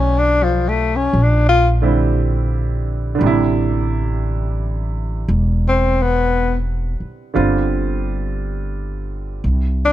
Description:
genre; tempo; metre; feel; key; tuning
jazz ballad; 58 BPM; 4/4; swing 66% on 8ths; unclear; A4 = 441 Hz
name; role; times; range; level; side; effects
breathy tenor saxophone; melody; 0.0-9.9 s; F3 to F4; -16 LUFS; left 3 dB; none
clear baby grand piano; accompaniment; 0.0-9.4 s; C3 to G4; -22 LUFS; right 4 dB; none
upright bass; bass; 0.0-9.9 s; E1 to C2; -18 LUFS; equal; none
room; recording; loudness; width
little or no reverb; dark, warm production; -16 LUFS; side -13 dB against mid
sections
0.0-9.9 A section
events
tenor saxophone solo 0.0-9.9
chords
0.0 G13/B; 1.2 Bbadd9; 3.2 Am7; 7.4 G5; 9.4 N.C.

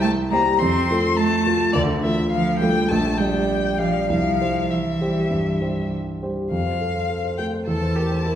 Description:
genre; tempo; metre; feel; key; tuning
quick classical-period movement for piano trio; 97-105 BPM; 4/4; rubato; F major; A4 = 440 Hz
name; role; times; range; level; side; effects
rich violin; melody; 0.0-8.4 s; D5 to C6; -24 LUFS; left 5 dB; none
rich cello; second line; 0.0-8.4 s; D3 to A4; -25 LUFS; right 4 dB; none
dark grand piano; accompaniment; 0.0-8.4 s; Bb1 to D5; -22 LUFS; equal; none
room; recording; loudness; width
wet recital hall reverb, RT60 1.6 s; heard from further back in the room; -19 LUFS; side -10 dB against mid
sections
0.0-6.5 A section; 6.5-8.4 B section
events
none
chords
0.0 C5; 0.6 F; 1.7 Dm; 2.9 Gm/Bb; 4.1 C; 6.5 F; 7.7 C7/E

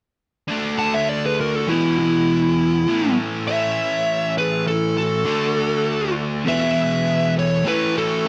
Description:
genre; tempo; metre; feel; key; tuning
rock; 101 BPM; 4/4; straight; unclear; A4 = 441 Hz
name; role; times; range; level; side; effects
overdriven tonewheel organ; sustained chords; 0.5-8.3 s; G#3 to A4; -34 LUFS; equal; chorus vibrato, slow rotary speaker
overdriven electric guitar; riff; 0.5-8.3 s; E2 to D4; -24 LUFS; equal; spring reverb
fuzz lead guitar; melody; 0.8-8.3 s; E4 to A5; -23 LUFS; equal; distortion
lead guitar through a small cranked amp; second line; 0.8-8.3 s; B3 to F#5; -31 LUFS; equal; overdrive
room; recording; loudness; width
little or no reverb; dry, close 1970s-style studio recording; -20 LUFS; mono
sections
0.5-8.3 A section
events
none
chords
0.5 D; 1.7 E; 2.9 A; 5.3 D; 6.5 E; 7.6 A

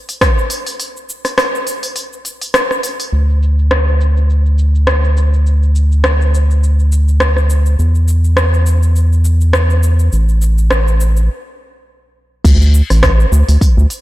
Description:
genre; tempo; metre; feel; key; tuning
sunset chillout; 103 BPM; 4/4; swing 56% on 16ths; unclear; A4 = 439 Hz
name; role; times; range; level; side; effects
deep house drum kit; drums; 0.1-14.0 s; crash cymbal, hi-hat, rim click, shaker; -17 LUFS; equal; low-pass filter on hats, small room ambience, low-pass filter on perc, low-pass filter on snare, low-pass filter on cymbals
electronic kick drum; drums; 0.2-0.3, 12.4-13.7 s; none; -12 LUFS; equal; small room ambience
round analog bass; bass; 3.1-13.9 s; A1 to E2; -10 LUFS; equal; tube saturation
room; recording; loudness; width
light reverb; blown-out, overdriven recording, overdrive; -10 LUFS; side -16 dB against mid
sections
0.0-3.1 A section; 3.1-12.5 B section; 12.5-14.0 A section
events
break 0.8-3.1; filter sweep on drum 3.1-12.5; stop 11.3-12.5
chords
none

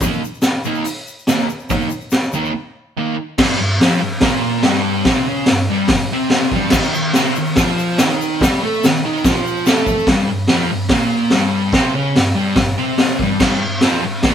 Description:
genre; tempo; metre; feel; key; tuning
garage rock duo or trio; 144 BPM; 4/4; straight; G minor; A4 = 440 Hz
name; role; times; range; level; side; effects
fuzz guitar; riff; 0.0-14.3 s; F2 to A4; -18 LUFS; equal; distortion
raw garage drum kit; drums; 0.0-14.3 s; crash cymbal, hi-hat, kick drum, snare drum; -16 LUFS; equal; none
tube shaker; percussion; 0.0-2.5, 6.7-10.0 s; none; -33 LUFS; left 8 dB; none
room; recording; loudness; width
light reverb; band playing live in one room; -14 LUFS; side -8 dB against mid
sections
0.0-3.4 A section; 3.4-10.1 B section; 10.1-14.3 C section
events
break 2.5-3.4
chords
0.0 Eb5; 3.4 Gm; 6.7 Cmadd11; 10.1 Gm

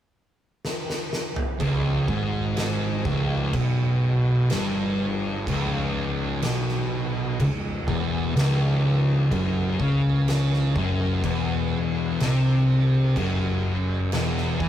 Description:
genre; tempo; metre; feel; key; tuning
stoner and doom metal; 62 BPM; 4/4; straight; C# minor; A4 = 441 Hz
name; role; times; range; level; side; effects
oversized low-tuned drum kit; drums; 0.6-14.7 s; crash cymbal, kick drum, snare drum, toms; -30 LUFS; equal; none
thick fuzz guitar; riff; 1.6-14.7 s; C#2 to E3; -24 LUFS; left 2 dB; distortion
thick fuzz guitar; riff; 1.6-14.7 s; C#2 to E3; -27 LUFS; right 4 dB; distortion
fuzz picked electric bass; bass; 1.6-14.7 s; C#1 to E2; -30 LUFS; equal; overdrive
room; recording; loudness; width
moderate booth ambience, RT60 0.2 s; rough rehearsal-room recording, warm saturation; -21 LUFS; side -11 dB against mid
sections
0.0-1.6 A section; 1.6-14.7 B section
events
drum fill 0.7-1.6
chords
0.0 N.C.; 1.6 C#m; 9.3 F#5

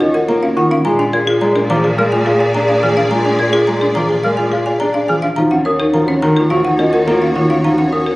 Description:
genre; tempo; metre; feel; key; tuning
classical, minimalist pattern music; 106 BPM; 4/4; straight; Eb minor; A4 = 437 Hz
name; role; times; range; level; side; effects
folk marimba with hard mallets; melody; 0.0-8.2 s; Ab4 to Bb5; -21 LUFS; left 2 dB; none
mellow hollow alto flute; second line; 0.0-8.2 s; Gb4 to Ab4; -20 LUFS; equal; none
warm grand piano; accompaniment; 0.0-8.1 s; Eb3 to F4; -19 LUFS; equal; none
rich studio string section; sustained chords; 0.0-8.2 s; Gb4 to D5; -26 LUFS; equal; none
folk marimba with medium mallets; arpeggios; 0.0-8.2 s; Db4 to D5; -17 LUFS; equal; none
worn celesta; arpeggios; 0.0-8.1 s; Eb5 to Ab6; -23 LUFS; equal; none
warm cello; bass; 0.0-8.2 s; Eb2 to Bb2; -21 LUFS; equal; none
room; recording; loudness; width
moderate recital hall reverb, RT60 1.6 s; recorded on a phone in the room, club reverb; -12 LUFS; side -20 dB against mid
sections
0.0-8.2 A section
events
none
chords
0.0 Ebm7; 0.9 Bb7; 5.4 Ebm7

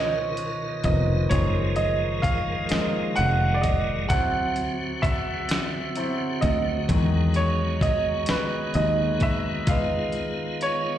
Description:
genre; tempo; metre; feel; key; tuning
slow six-eight R&B; 43 BPM (dotted quarters); 6/8; straight; unclear; A4 = 440 Hz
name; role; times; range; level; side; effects
clear concert grand piano; accompaniment; 0.0-11.0 s; D#3 to Gb5; -25 LUFS; right 1 dB; slapback echo
tonewheel organ; sustained chords; 0.0-11.0 s; Cb3 to Bb4; -31 LUFS; right 1 dB; chorus vibrato, fast rotary speaker
fingered electric bass; bass; 0.0-11.0 s; F1 to F2; -26 LUFS; left 1 dB; none
dusty soul sampler-style drum kit; drums; 0.4-10.8 s; hi-hat, kick drum, snare drum; -26 LUFS; equal; none
room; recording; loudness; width
light reverb; live gig heard through the venue's PA, recital hall reverb; -22 LUFS; side -11 dB against mid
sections
0.0-11.0 A section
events
grand piano solo 0.0-11.0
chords
0.0 Db13; 1.3 Gbmaj13; 4.1 D9; 6.9 Emaj7; 9.7 Fm7b5

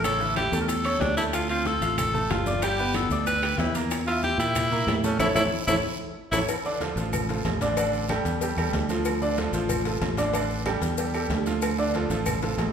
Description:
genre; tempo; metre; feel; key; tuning
latin, salsa; 187 BPM; 4/4; straight; D minor; A4 = 439 Hz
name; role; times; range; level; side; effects
bright tenor saxophone; melody; 0.0-6.4 s; C#4 to B4; -26 LUFS; equal; none
bright baby grand piano; accompaniment; 0.0-12.7 s; C#3 to G6; -28 LUFS; right 1 dB; none
fingered electric bass; bass; 0.0-12.7 s; G1 to Bb2; -29 LUFS; right 1 dB; none
bongos and cowbell; percussion; 0.0-12.7 s; none; -35 LUFS; left 6 dB; none
claves; percussion; 0.0-12.4 s; none; -41 LUFS; left 2 dB; none
guiro; percussion; 0.0-12.7 s; none; -41 LUFS; right 4 dB; none
maracas; percussion; 0.0-12.7 s; none; -40 LUFS; left 6 dB; none
timbales and agogo bells; percussion; 0.0-12.7 s; none; -34 LUFS; right 4 dB; none
congas; percussion; 0.1-12.7 s; none; -36 LUFS; left 2 dB; none
room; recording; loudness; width
wet recital hall reverb, RT60 1.3 s; recorded in a church or concert hall; -23 LUFS; side -7 dB against mid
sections
0.0-6.5 A section; 6.5-12.7 B section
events
band accent 5.2-6.5; drum fill 5.7-6.5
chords
0.0 A; 1.3 Dm7; 2.6 G; 3.9 Edim; 5.2 A; 6.5 Dm; 7.8 A7sus4; 9.1 Dm; 10.3 A7sus4; 11.6 Dm

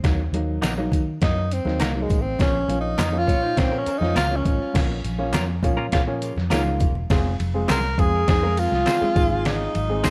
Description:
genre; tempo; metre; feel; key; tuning
uptempo 1960s-style soul; 102 BPM; 4/4; straight; unclear; A4 = 440 Hz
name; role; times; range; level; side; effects
warm upright piano; accompaniment; 0.0-10.1 s; F3 to Bb4; -31 LUFS; equal; none
vintage muted fingered electric bass; bass; 0.0-10.1 s; Fb1 to Eb3; -28 LUFS; equal; none
trip hop sampler-style drum kit; drums; 0.0-10.1 s; crash cymbal, hi-hat, kick drum, ride cymbal, snare drum; -26 LUFS; equal; none
congas; percussion; 0.0-10.1 s; none; -38 LUFS; equal; none
tambourine and handclaps; percussion; 0.0-10.1 s; none; -40 LUFS; equal; none
semi-hollow electric guitar; stabs; 0.6-10.1 s; Bb3 to C5; -32 LUFS; equal; none
warm tenor saxophone; melody; 1.2-10.1 s; Ab3 to Bb4; -27 LUFS; equal; tape echo
electric guitar through a small old amp; riff; 3.3-4.7, 8.3-9.1 s; Ab3 to Db5; -35 LUFS; equal; harmonic tremolo
bright saxophone section; second line; 5.9-6.9 s; Db3 to F4; -31 LUFS; equal; none
room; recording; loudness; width
light reverb; none; -22 LUFS; mono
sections
0.0-4.7 A section; 4.7-7.1 B section; 7.1-10.1 C section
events
tenor saxophone solo 0.0-4.7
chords
0.0 Ebm; 2.4 Bbm; 7.1 Fm; 9.2 Ab

